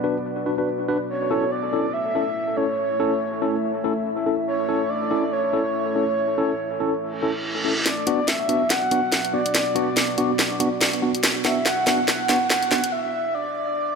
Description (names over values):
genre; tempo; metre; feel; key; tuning
deep dubstep; 142 BPM; 4/4; swing 58% on 16ths, half-time; B minor; A4 = 442 Hz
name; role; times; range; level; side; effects
deep dark ambient pad; sustained chords; 0.0-12.9 s; A3 to E5; -29 LUFS; equal; chorus, built-in reverb
barky tine electric piano; stabs; 0.0-12.8 s; B3 to B4; -25 LUFS; left 1 dB; medium stereo tremolo, low-pass filter, dub echo
breathy flute-like synth lead; melody; 1.1-14.0 s; C#5 to F#5; -24 LUFS; right 1 dB; analog chorus, dub echo
reverse cymbal; sound effects; 7.2-7.9 s; none; -27 LUFS; right 2 dB; none
garage drum kit; drums; 7.9-12.9 s; hi-hat, snare drum; -22 LUFS; equal; high-pass filter on snare, high-pass filter on hats
room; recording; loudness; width
moderate echo chamber reverb, RT60 1.8 s; echo-heavy mix; -20 LUFS; side -5 dB against mid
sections
0.0-7.9 A section; 7.9-14.0 B section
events
reverse cymbal 7.2-7.9; build-up 7.9-14.0; drum fill 7.9-12.9; break 12.9-14.0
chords
0.0 Bm; 1.1 A; 7.9 Bm